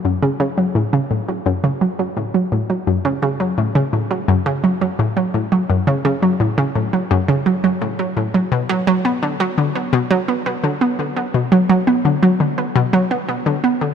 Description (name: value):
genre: ambient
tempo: 85 BPM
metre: 4/4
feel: straight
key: F# minor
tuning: A4 = 440 Hz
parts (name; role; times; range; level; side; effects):
- analog pluck; solo; 0.0-13.9 s; F#2 to B3; -16 LUFS; equal; chorus, ping-pong delay
room: moderate huge ambient reverb, RT60 7.6 s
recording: none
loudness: -16 LUFS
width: side -7 dB against mid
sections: 0.0-13.9 A section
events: none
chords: none